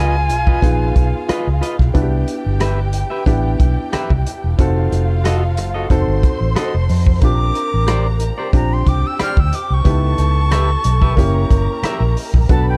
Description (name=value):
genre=lush 1970s-style soul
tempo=91 BPM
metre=4/4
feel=swing 54% on 16ths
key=unclear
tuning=A4 = 440 Hz
part: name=breathy bright jazz flute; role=melody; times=0.0-1.6, 7.2-12.8 s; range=G5 to F6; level=-25 LUFS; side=equal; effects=none
part: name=dark studio string section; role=second line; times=0.0-12.8 s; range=E#4 to C6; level=-30 LUFS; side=equal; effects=none
part: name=clear concert grand piano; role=accompaniment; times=0.0-12.8 s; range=A#3 to A4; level=-26 LUFS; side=equal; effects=none
part: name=electric guitar at the edge of break-up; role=riff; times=0.0-12.0 s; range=E#4 to E5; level=-27 LUFS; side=equal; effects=none
part: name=vintage muted fingered electric bass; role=bass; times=0.0-12.8 s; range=E1 to F2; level=-19 LUFS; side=equal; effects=none
part: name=warm soul drum kit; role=drums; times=0.3-12.7 s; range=hi-hat, kick drum, rim click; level=-19 LUFS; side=equal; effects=none
room=little or no reverb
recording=dark, warm production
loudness=-16 LUFS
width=mono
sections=0.0-12.8 A section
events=none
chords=0.0 C#9; 1.9 Cmaj7; 4.6 F7b9; 7.2 Bb69; 9.9 C#m7b5; 11.2 F#7b9